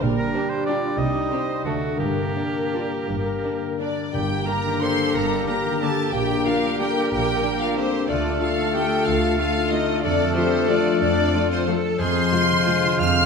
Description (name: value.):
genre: classical.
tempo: 158-199 BPM.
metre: 3/4.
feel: rubato.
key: G minor.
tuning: A4 = 441 Hz.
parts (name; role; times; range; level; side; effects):
warm clarinet; second line; 0.0-13.3 s; C4 to F5; -30 LUFS; left 2 dB; none.
mellow bassoon; accompaniment; 0.0-13.3 s; G3 to Bb3; -29 LUFS; right 3 dB; none.
warm studio viola section; accompaniment; 0.0-12.7 s; Ab3 to C5; -33 LUFS; right 2 dB; none.
concert harp; arpeggios; 0.0-13.3 s; F2 to Eb5; -28 LUFS; left 10 dB; none.
clear studio cello section; bass; 0.0-13.3 s; G2 to Bb4; -30 LUFS; right 2 dB; none.
clear studio double bass section; bass; 0.0-13.3 s; G1 to F2; -28 LUFS; right 6 dB; none.
clear oboe; second line; 0.2-13.3 s; F#4 to Eb5; -31 LUFS; right 2 dB; none.
rich studio violin section; melody; 0.3-13.3 s; D4 to F6; -27 LUFS; left 2 dB; none.
rich symphonic violin section; second line; 0.3-13.3 s; G3 to F6; -30 LUFS; left 1 dB; none.
concert flute; second line; 4.1-13.3 s; D6 to F6; -32 LUFS; left 1 dB; none.
dark French horn section; sustained chords; 4.1-12.8 s; Ab3 to F4; -27 LUFS; left 5 dB; none.
timpani; percussion; 4.1-4.6 s; G2; -33 LUFS; equal; none.
room: wet concert hall reverb, RT60 2.3 s.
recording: none.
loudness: -19 LUFS.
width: side -5 dB against mid.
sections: 0.0-4.1 A section; 4.1-13.3 B section.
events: none.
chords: 0.0 Gm/Bb; 1.0 Cm; 1.7 D; 2.0 Gm; 6.1 Gm/Bb; 8.1 Dm; 10.0 Dm/F; 12.0 Fm.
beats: | 0.02 0.34 0.67 | 0.99 1.31 1.66 | 2.01 2.37 2.74 | 3.09 3.44 3.80 | 4.13 4.47 4.82 | 5.15 5.48 5.82 | 6.14 6.46 6.80 | 7.12 7.44 7.78 | 8.09 8.41 8.75 | 9.07 9.39 9.73 | 10.04 10.36 10.69 | 11.01 11.34 11.68 | 11.99 12.31 12.65 | 13.00.